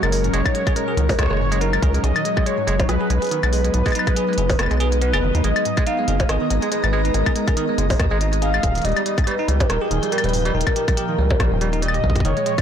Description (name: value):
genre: IDM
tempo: 141 BPM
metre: 4/4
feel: swing 56% on 16ths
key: unclear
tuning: A4 = 440 Hz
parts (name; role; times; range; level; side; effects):
- warm velvety synth lead; melody; 0.0-12.6 s; G#4 to E#5; -24 LUFS; left 1 dB; chorus, digital delay
- glassy FM pad; sustained chords; 0.0-12.6 s; A#2 to A#5; -25 LUFS; left 1 dB; ensemble chorus, built-in reverb, sidechain pumping
- bell-like tine electric piano; arpeggios; 0.0-12.6 s; G2 to G#4; -26 LUFS; right 5 dB; digital delay
- deep acid bass; bass; 0.0-12.3 s; D#1 to D#2; -20 LUFS; equal; tube saturation
- glitchy drum kit; drums; 0.0-12.6 s; claves, hi-hat, percussion blips, rim click; -26 LUFS; left 3 dB; none
- electronic kick drum; drums; 0.5-12.6 s; none; -21 LUFS; equal; none
room: light reverb, digital ambience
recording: blown-out, overdriven recording, overdrive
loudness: -17 LUFS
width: side -9 dB against mid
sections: 0.0-12.6 A section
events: kick drops out 4.6-5.4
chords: 0.0 F#; 2.0 B; 5.4 G#madd9; 8.8 D#add9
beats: | 0.34 0.76 1.19 1.61 | 2.04 2.46 2.89 3.31 | 3.74 4.17 4.59 5.02 | 5.44 5.87 6.29 6.72 | 7.14 7.57 8.00 8.42 | 8.85 9.27 9.70 10.12 | 10.55 10.97 11.40 11.82 | 12.25